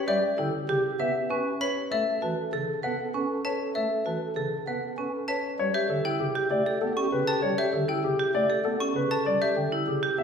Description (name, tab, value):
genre	classical, minimalist pattern music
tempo	196 BPM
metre	6/4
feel	straight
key	unclear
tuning	A4 = 440 Hz
part	warm French horn	second line	0.0-10.2 s	G4 to A4	-35 LUFS	equal	none
part	dark concert grand piano	melody	0.1-10.2 s	G4 to A5	-29 LUFS	left 4 dB	none
part	pipe organ, stopped flute	accompaniment	0.1-10.2 s	C#3 to C#4	-32 LUFS	right 2 dB	none
part	marimba with hard mallets	arpeggios	0.1-10.2 s	C#4 to B4	-30 LUFS	right 4 dB	none
part	xylophone with wooden mallets	arpeggios	0.1-9.6 s	E5 to C#6	-34 LUFS	left 3 dB	none
room	wet recital hall reverb, RT60 1.4 s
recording	heard from further back in the room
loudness	-25 LUFS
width	side -6 dB against mid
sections	0.0-5.6 A section; 5.6-10.2 B section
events	none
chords	0.0 Em; 1.9 F#m7 (rootless); 5.6 A7(no3); 9.3 Em7